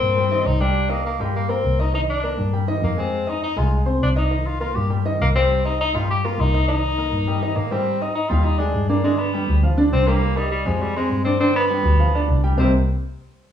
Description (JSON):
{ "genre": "Afro-Cuban jazz", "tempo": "203 BPM", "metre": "4/4", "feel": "straight", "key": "C minor", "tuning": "A4 = 440 Hz", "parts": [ { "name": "warm tenor saxophone", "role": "melody", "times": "0.0-12.7 s", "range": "F3 to G4", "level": "-23 LUFS", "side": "left 2 dB", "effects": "plate reverb" }, { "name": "clear grand piano", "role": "accompaniment", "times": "0.0-12.7 s", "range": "C3 to Eb6", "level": "-24 LUFS", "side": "right 2 dB", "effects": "none" }, { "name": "dark double bass", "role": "bass", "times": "0.0-12.7 s", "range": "C2 to Ab2", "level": "-21 LUFS", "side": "left 1 dB", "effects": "none" } ], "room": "wet large studio reverb, RT60 0.9 s", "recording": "heard from further back in the room, small room ambience", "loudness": "-18 LUFS", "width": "side -9 dB against mid", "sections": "0.0-12.6 A section", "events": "none", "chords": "0.0 Cm7; 3.1 Fm7; 4.3 Cm7; 7.9 Ab5; 9.0 G7; 10.2 Cm; 10.8 Fm; 11.4 G7; 12.6 Cm7" }